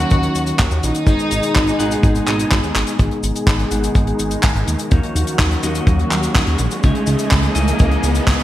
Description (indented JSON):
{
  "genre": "italo disco",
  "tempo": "125 BPM",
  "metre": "4/4",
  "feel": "straight",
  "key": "unclear",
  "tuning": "A4 = 440 Hz",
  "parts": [
    { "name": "clear studio violin section", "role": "melody", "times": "0.0-2.5 s", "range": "D#4 to F#4", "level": "-22 LUFS", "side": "equal", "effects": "vintage 12-bit sampler grit, digital delay" },
    { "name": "dark studio string section", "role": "sustained chords", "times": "0.0-8.4 s", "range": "B2 to D#5", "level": "-23 LUFS", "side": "equal", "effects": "low-pass filter" },
    { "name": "clean electric guitar", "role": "stabs", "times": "0.0-8.4 s", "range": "G#2 to F#5", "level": "-23 LUFS", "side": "left 1 dB", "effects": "spring reverb, low-pass filter" },
    { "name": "chorused synth bass", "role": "bass", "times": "0.0-8.4 s", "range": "G#1 to D#2", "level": "-20 LUFS", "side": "equal", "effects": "tube saturation" },
    { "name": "damped 70s drum kit", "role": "drums", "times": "0.1-8.4 s", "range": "cabasa, handclaps, hi-hat", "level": "-22 LUFS", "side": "equal", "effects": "gated reverb" },
    { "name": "kick drum", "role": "drums", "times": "0.1-8.4 s", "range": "none", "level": "-15 LUFS", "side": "equal", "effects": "none" },
    { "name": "riser", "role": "sound effects", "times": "5.1-8.4 s", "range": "none", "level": "-26 LUFS", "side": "right 1 dB", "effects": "none" }
  ],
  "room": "moderate lush hall reverb, RT60 2.0 s, studio ambience",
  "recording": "bright 1980s-style digital production, vinyl crackle",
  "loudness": "-14 LUFS",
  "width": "side -13 dB against mid",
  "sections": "0.0-3.0 A section; 3.0-8.4 B section",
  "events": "drum fill 2.8; filter sweep on clean electric guitar 3.0-8.4; filter sweep on string section 3.0-8.4; riser 5.1-8.4",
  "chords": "0.0 D#m7; 1.1 G#m; 4.9 D#m7; 6.8 C#madd9"
}